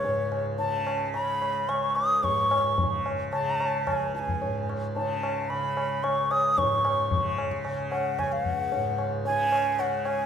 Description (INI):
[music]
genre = indian classical, Hindustani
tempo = 111 BPM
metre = 4/4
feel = straight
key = unclear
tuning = A4 = 440 Hz
[part]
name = bansuri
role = melody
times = 0.0-10.3 s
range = C#5 to D#6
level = -26 LUFS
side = equal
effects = none
[part]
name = tanpura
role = drone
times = 0.0-10.3 s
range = C#2 to C#3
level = -33 LUFS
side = right 3 dB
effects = none
[part]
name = tabla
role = percussion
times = 0.0-10.2 s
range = none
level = -30 LUFS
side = left 1 dB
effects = none
[sound]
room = moderate concert hall reverb, RT60 2.0 s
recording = minimal, uncompressed stereo recording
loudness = -24 LUFS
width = side -8 dB against mid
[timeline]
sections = 0.0-10.3 A section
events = speeding up 0.0-10.3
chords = none